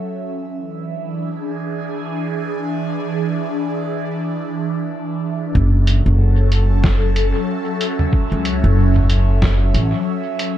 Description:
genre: ambient dub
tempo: 93 BPM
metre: 4/4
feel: swing 58% on 16ths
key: F# minor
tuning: A4 = 438 Hz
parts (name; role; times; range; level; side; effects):
- airy breathy pad; sustained chords; 0.0-10.6 s; E3 to E5; -21 LUFS; equal; chorus, phaser
- upright bass; bass; 5.5-9.9 s; F#1 to C#2; -14 LUFS; equal; none
- electronic kick drum; drums; 5.6-9.6 s; none; -18 LUFS; equal; none
- lo-fi sampler-style drum kit; drums; 5.9-10.5 s; hi-hat, snare drum, toms; -23 LUFS; equal; dub echo
room: little or no reverb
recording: dark, warm production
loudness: -16 LUFS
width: side -12 dB against mid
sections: 0.0-5.6 A section; 5.6-10.6 B section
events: none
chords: 0.4 E7; 5.6 F#m7

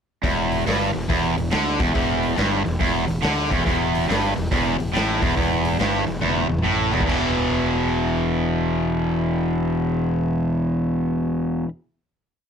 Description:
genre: blues rock power trio and southern rock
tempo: 140 BPM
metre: 4/4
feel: swing 65% on 8ths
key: unclear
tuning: A4 = 440 Hz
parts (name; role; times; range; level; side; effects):
- cranked stack guitar; riff; 0.2-11.7 s; E2 to E3; -20 LUFS; equal; overdrive
- fuzz fingered electric bass; bass; 0.2-11.6 s; E1 to D2; -28 LUFS; equal; overdrive
- raw garage drum kit; drums; 0.2-7.2 s; crash cymbal, hi-hat, kick drum, snare drum, toms; -26 LUFS; equal; none
room: light reverb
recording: none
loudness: -19 LUFS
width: side -7 dB against mid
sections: 0.2-7.1 riff; 7.1-10.5 final chord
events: drum fill 6.2-7.1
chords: 0.2 Em7; 7.1 E5

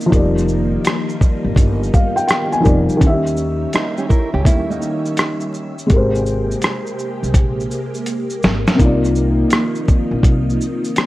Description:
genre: lo-fi hip hop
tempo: 83 BPM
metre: 4/4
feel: swing 65% on 16ths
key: unclear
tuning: A4 = 440 Hz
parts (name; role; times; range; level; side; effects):
- felt-muted upright piano; accompaniment; 0.0-11.1 s; C3 to Ab5; -20 LUFS; left 1 dB; cassette tape
- ensemble organ-string; sustained chords; 0.0-11.1 s; C3 to Fb5; -24 LUFS; equal; phaser, ensemble chorus
- dusty soul sampler-style drum kit; drums; 0.0-11.1 s; hi-hat, kick drum, rim click, shaker, snare drum; -15 LUFS; equal; none
- upright bass; bass; 0.1-10.6 s; F1 to Eb2; -20 LUFS; equal; none
- nylon-string guitar; second line; 3.7-5.7 s; Bb3 to Bb4; -22 LUFS; right 2 dB; analog delay
room: light reverb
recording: vinyl crackle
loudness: -14 LUFS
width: side -17 dB against mid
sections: 0.0-11.1 A section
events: drum fill 7.3-8.8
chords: 0.1 F13sus4; 3.0 Eb7b9; 5.9 Abmaj9; 8.8 Cm11

